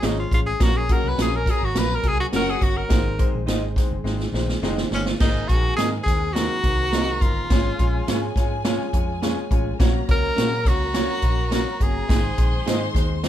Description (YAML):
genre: uptempo 1960s-style soul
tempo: 105 BPM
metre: 4/4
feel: straight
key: Ab mixolydian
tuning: A4 = 441 Hz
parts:
  - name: bright tenor saxophone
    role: melody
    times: 0.0-13.0 s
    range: Db4 to Cb5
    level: -25 LUFS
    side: left 1 dB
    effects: none
  - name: warm grand piano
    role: accompaniment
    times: 0.0-13.3 s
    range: F3 to Db5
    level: -30 LUFS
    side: left 3 dB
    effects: none
  - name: percussive tonewheel organ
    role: sustained chords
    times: 0.0-13.3 s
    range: Eb3 to Bb4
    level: -35 LUFS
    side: equal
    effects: none
  - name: electric guitar through a small old amp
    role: stabs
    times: 0.0-12.8 s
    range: C4 to Eb5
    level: -31 LUFS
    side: right 1 dB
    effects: none
  - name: vintage muted fingered electric bass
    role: bass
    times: 0.0-13.3 s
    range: Gb1 to Bb2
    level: -27 LUFS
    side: equal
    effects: none
  - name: swinging big-band drum kit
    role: drums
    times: 0.0-13.3 s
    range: crash cymbal, hi-hat, kick drum, snare drum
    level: -22 LUFS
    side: equal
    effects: none
  - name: warm studio string section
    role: second line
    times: 0.9-13.3 s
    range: Gb4 to C6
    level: -32 LUFS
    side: left 3 dB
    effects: none
room: moderate small room reverb, RT60 0.5 s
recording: band playing live in one room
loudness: -19 LUFS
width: side -11 dB against mid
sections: 0.0-5.2 A section; 5.2-13.3 B section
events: tenor saxophone solo 0.0-5.2; drum fill 4.1-5.2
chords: 0.0 Db; 0.6 Gb; 2.9 Ab; 5.2 Abadd9; 7.5 Db/Ab; 9.8 Gb/Bb; 12.1 Ab